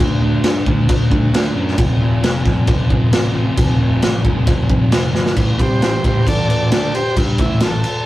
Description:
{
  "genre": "garage rock duo or trio",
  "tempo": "134 BPM",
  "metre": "4/4",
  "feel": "straight",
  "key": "A minor",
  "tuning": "A4 = 440 Hz",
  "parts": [
    { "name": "fuzz guitar", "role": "riff", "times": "0.0-7.8 s", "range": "F2 to G4", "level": "-21 LUFS", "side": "equal", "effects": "distortion" },
    { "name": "growling picked electric bass", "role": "bass", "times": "0.0-7.8 s", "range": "F1 to G2", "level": "-22 LUFS", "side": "equal", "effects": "overdrive, tube saturation" },
    { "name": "raw garage drum kit", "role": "drums", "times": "0.4-7.9 s", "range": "crash cymbal, kick drum, snare drum", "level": "-15 LUFS", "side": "equal", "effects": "none" },
    { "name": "combo organ", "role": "melody", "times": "5.6-8.1 s", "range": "E4 to D5", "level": "-20 LUFS", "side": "equal", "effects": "none" }
  ],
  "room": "light reverb",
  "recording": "rough rehearsal-room recording",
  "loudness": "-13 LUFS",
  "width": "side -16 dB against mid",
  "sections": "0.0-5.4 A section; 5.4-8.1 B section",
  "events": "drum fill 5.1; transistor combo organ solo 5.4-8.1",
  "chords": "0.0 D5; 1.8 F; 5.4 Am"
}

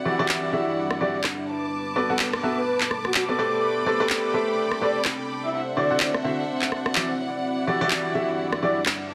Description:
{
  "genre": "piano house",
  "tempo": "126 BPM",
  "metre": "4/4",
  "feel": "swing 58% on 16ths",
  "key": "unclear",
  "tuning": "A4 = 440 Hz",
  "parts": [
    { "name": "dark symphonic violin section", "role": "sustained chords", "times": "0.0-9.1 s", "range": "D4 to D6", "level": "-32 LUFS", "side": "equal", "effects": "none" },
    { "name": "deep dark ambient pad", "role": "texture", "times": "0.0-9.1 s", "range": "G3 to E5", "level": "-35 LUFS", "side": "equal", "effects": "chorus, built-in reverb" },
    { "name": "clear upright piano", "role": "riff", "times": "0.1-8.8 s", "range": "D3 to F#5", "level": "-27 LUFS", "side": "equal", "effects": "low-pass filter, digital delay" },
    { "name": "electronic handclaps and rim click", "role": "drums", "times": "0.3-9.0 s", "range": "none", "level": "-28 LUFS", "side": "equal", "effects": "none" },
    { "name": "breathy flute-like synth lead", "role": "melody", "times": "1.0-8.8 s", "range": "F#4 to E5", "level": "-30 LUFS", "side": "equal", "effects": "ensemble chorus, cassette tape" }
  ],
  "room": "light reverb, small room ambience",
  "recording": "dense, heavily limited modern master",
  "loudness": "-24 LUFS",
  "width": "mono",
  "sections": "0.0-9.1 A section",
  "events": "none",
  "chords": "0.0 Em9; 1.5 Bm7; 3.6 Am11; 5.5 D9; 7.2 Em9"
}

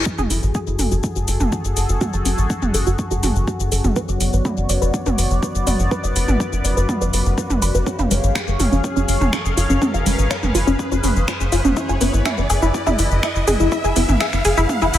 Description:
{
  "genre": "melodic techno",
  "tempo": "123 BPM",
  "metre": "4/4",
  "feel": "straight",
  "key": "F# minor",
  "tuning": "A4 = 439 Hz",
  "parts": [
    { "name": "sweeping resonant pad", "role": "sustained chords", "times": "0.0-15.0 s", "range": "B3 to E#5", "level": "-26 LUFS", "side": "left 2 dB", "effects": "chorus, sidechain pumping" },
    { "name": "tight sequenced synth", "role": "arpeggios", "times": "0.0-14.9 s", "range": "G#3 to D6", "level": "-22 LUFS", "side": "equal", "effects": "chorus, cassette tape, sidechain pumping, tape echo" },
    { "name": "tight sequencer bass", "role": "bass", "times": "0.0-15.0 s", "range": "F#1 to G#1", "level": "-19 LUFS", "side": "equal", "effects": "sidechain pumping" },
    { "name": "analog drone", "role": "drone", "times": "0.0-15.0 s", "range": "F#2", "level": "-28 LUFS", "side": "equal", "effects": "chorus, sidechain pumping" },
    { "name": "reverse cymbal and riser", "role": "sound effects", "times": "0.0-15.0 s", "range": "none", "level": "-29 LUFS", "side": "equal", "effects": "none" },
    { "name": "electronic kick drum", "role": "drums", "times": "0.1-14.8 s", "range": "none", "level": "-26 LUFS", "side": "equal", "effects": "high-pass filter on kick" },
    { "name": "house drum kit", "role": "drums", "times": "0.1-15.0 s", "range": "finger snaps, hi-hat, shaker, toms", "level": "-24 LUFS", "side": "right 1 dB", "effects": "tape echo" }
  ],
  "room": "light reverb, digital ambience",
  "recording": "echo-heavy mix",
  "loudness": "-16 LUFS",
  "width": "side -12 dB against mid",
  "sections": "0.1-15.0 A section",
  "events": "build-up 0.1-15.0; riser 0.1-15.0; filter sweep on synth arpeggio sound 0.1-15.0; reverse cymbal 14.7",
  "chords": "0.1 F#madd9; 4.0 Bm/F#; 7.9 C#/F#; 11.8 E/F#"
}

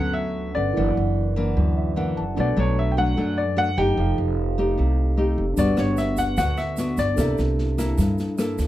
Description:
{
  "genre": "bossa nova",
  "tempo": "150 BPM",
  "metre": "4/4",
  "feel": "straight",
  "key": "unclear",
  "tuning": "A4 = 440 Hz",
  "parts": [
    { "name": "warm grand piano", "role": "melody", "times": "0.0-7.4 s", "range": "C#5 to G5", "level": "-26 LUFS", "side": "left 2 dB", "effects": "none" },
    { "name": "barky tine electric piano", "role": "accompaniment", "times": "0.0-8.7 s", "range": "C#4 to A5", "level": "-29 LUFS", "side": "right 2 dB", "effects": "lush chorus" },
    { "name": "nylon-string guitar", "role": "accompaniment", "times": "0.0-8.7 s", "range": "F#2 to A4", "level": "-25 LUFS", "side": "left 2 dB", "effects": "none" },
    { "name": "upright bass", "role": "bass", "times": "0.0-8.7 s", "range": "F1 to G2", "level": "-24 LUFS", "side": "right 1 dB", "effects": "none" },
    { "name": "open jazz drum kit", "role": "drums", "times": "5.6-8.6 s", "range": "kick drum, rim click, snare drum", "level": "-29 LUFS", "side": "right 1 dB", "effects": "none" },
    { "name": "egg shaker", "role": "percussion", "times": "5.6-8.7 s", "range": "none", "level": "-42 LUFS", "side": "right 6 dB", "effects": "none" }
  ],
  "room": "light reverb",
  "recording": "none",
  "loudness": "-20 LUFS",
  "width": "side -14 dB against mid",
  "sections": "0.0-8.7 A section",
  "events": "tine electric piano fill 1.6-2.4",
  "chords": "0.0 Gmaj9#11; 0.8 F#aug7; 2.4 Bm7; 4.0 F9; 5.6 Gmaj7; 7.2 C13"
}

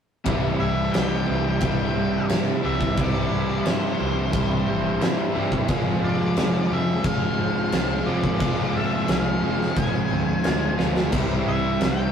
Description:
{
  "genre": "rock, shoegaze and dream pop",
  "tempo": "88 BPM",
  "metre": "4/4",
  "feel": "straight",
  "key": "unclear",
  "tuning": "A4 = 445 Hz",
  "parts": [
    { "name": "phased string machine", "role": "sustained chords", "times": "2.3-12.1 s", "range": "F4 to C6", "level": "-38 LUFS", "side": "left 2 dB", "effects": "none" },
    { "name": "overdriven semi-hollow guitar", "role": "riff", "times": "0.2-12.1 s", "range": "F2 to F4", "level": "-29 LUFS", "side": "left 4 dB", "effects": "none" },
    { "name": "overdriven semi-hollow guitar", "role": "riff", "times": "0.2-12.1 s", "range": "C3 to F4", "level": "-28 LUFS", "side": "right 5 dB", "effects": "none" },
    { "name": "twangy electric guitar", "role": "arpeggios", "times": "0.3-12.1 s", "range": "G3 to F4", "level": "-34 LUFS", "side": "right 4 dB", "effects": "none" },
    { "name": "overdriven electric guitar", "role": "riff", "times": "0.3-12.1 s", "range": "C3 to F4", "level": "-27 LUFS", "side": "equal", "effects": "none" },
    { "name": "vintage muted picked electric bass", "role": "bass", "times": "0.3-12.1 s", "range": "F1 to Bb2", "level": "-30 LUFS", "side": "equal", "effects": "none" },
    { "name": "huge arena drum kit", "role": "drums", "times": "0.3-12.0 s", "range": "crash cymbal, kick drum, snare drum, splash cymbal", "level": "-26 LUFS", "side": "left 1 dB", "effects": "none" },
    { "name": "octave-fuzz lead guitar", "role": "melody", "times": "0.6-12.1 s", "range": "C5 to Ab5", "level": "-31 LUFS", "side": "left 2 dB", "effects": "distortion" }
  ],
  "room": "moderate stone room reverb, RT60 1.1 s",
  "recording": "rough rehearsal-room recording, tube saturation",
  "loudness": "-20 LUFS",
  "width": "side -8 dB against mid",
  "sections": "0.3-12.1 A section",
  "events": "drum fill 10.8-11.1",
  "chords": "0.3 C; 5.7 Fm; 11.1 C"
}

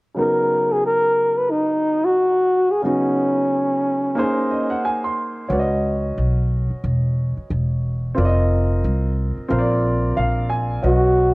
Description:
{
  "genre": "hip hop, jazz-hop",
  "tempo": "90 BPM",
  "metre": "4/4",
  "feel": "swing 58% on 16ths",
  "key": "unclear",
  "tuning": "A4 = 440 Hz",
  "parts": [
    { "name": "warm upright piano", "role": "accompaniment", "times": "0.1-11.3 s", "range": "C#3 to B#5", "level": "-23 LUFS", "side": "right 1 dB", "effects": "cassette tape" },
    { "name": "breathy flugelhorn", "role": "melody", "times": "0.2-4.8, 10.9-11.3 s", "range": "C#4 to B4", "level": "-17 LUFS", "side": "equal", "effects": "none" },
    { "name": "upright bass", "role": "bass", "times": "5.5-11.3 s", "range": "E1 to C#2", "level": "-19 LUFS", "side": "equal", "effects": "none" }
  ],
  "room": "moderate spring reverb, RT60 2.0 s",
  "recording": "home recording on cassette",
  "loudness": "-17 LUFS",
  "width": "side -24 dB against mid",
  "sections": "0.2-10.8 A section",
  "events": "upright piano fill 4.2-5.5, 9.8-10.8",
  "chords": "0.2 C#9sus4; 4.2 G#; 5.5 C#m7; 8.2 F5; 9.5 A#; 10.8 B"
}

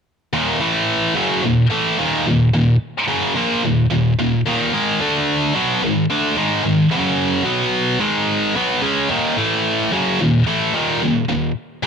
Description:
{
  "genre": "metal",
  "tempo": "110 BPM",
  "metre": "4/4",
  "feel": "straight",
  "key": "Eb phrygian",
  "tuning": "A4 = 442 Hz",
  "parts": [
    { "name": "heavy high-gain guitar", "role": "solo", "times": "0.3-11.9 s", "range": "Eb2 to D4", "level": "-15 LUFS", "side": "equal", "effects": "distortion" }
  ],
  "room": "digital ambience",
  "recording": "dark, warm production",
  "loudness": "-15 LUFS",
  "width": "side -6 dB against mid",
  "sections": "0.3-11.9 A section",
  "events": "none",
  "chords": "0.3 Eb5; 0.6 A5; 1.2 Ebm; 4.7 Ab5; 5.0 D5; 5.5 Ab5; 6.9 Gb5; 7.5 B5; 8.0 Ab5; 9.1 Eb5; 9.4 A5; 9.9 Ebm"
}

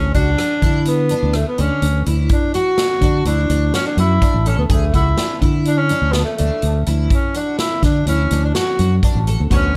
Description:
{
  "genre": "progressive instrumental, band music in an uneven meter",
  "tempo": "125 BPM",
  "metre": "5/4",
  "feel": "straight",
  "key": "D major",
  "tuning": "A4 = 441 Hz",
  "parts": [
    { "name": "warm tenor saxophone", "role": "melody", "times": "0.0-9.7 s", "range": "A3 to F#4", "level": "-22 LUFS", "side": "equal", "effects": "plate reverb" },
    { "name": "picked twelve-string acoustic guitar", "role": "arpeggios", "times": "0.0-9.6 s", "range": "D3 to A4", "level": "-28 LUFS", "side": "equal", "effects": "subtle chorus, tape echo" },
    { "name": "fingered electric bass", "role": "bass", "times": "0.0-9.7 s", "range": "A1 to D3", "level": "-19 LUFS", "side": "equal", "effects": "none" },
    { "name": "swinging big-band drum kit", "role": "drums", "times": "0.1-9.6 s", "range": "hi-hat, kick drum, rim click, snare drum", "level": "-22 LUFS", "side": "equal", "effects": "none" },
    { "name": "archtop guitar, miked and amplified", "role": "accompaniment", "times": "9.5-9.8 s", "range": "D3 to C#5", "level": "-27 LUFS", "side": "equal", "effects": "none" }
  ],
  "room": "light reverb",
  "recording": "dark, warm production",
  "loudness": "-17 LUFS",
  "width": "mono",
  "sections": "0.0-9.8 A section",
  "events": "none",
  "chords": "0.0 D"
}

